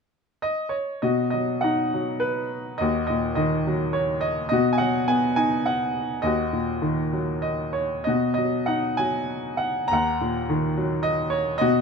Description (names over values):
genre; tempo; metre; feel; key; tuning
classical, lyrical solo piano; 93-109 BPM; 3/4; rubato; B major; A4 = 441 Hz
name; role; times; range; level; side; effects
bright upright piano; solo; 0.4-11.8 s; D#2 to A#5; -22 LUFS; equal; none
room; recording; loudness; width
light reverb; close, detailed microphones; -22 LUFS; side -5 dB against mid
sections
0.0-1.0 A section; 1.0-11.8 B section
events
none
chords
0.0 N.C.; 1.0 B; 2.8 D#m; 4.5 B; 6.2 D#m; 8.1 B; 9.9 D#m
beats
0.44 | 1.02 1.63 2.22 | 2.80 3.37 3.94 | 4.51 5.08 5.66 | 6.23 6.82 7.44 | 8.07 8.68 9.30 | 9.90 10.49 11.05 | 11.61